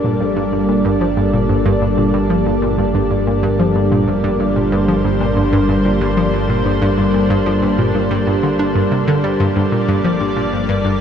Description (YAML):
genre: ambient, sequencer-driven space music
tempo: 93 BPM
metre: 4/4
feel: straight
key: G minor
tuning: A4 = 439 Hz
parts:
  - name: lush unison pad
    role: sustained chords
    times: 0.0-11.0 s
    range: G3 to D5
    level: -16 LUFS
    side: equal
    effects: chorus
  - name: analog pluck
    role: riff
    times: 0.0-10.9 s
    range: G2 to D4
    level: -18 LUFS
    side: equal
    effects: chorus, vintage 12-bit sampler grit, analog delay
  - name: fat analog bass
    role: bass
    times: 0.0-11.0 s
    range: G1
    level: -23 LUFS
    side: equal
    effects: none
room: wet huge ambient reverb, RT60 7.5 s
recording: in a vast, echoing space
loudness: -13 LUFS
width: side -8 dB against mid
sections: 0.0-11.0 A section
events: none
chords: 0.0 Gmadd9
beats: 0.37 1.01 | 1.66 2.30 2.95 3.59 | 4.24 4.88 5.53 6.17 | 6.82 7.46 8.11 8.75 | 9.40 10.04 10.69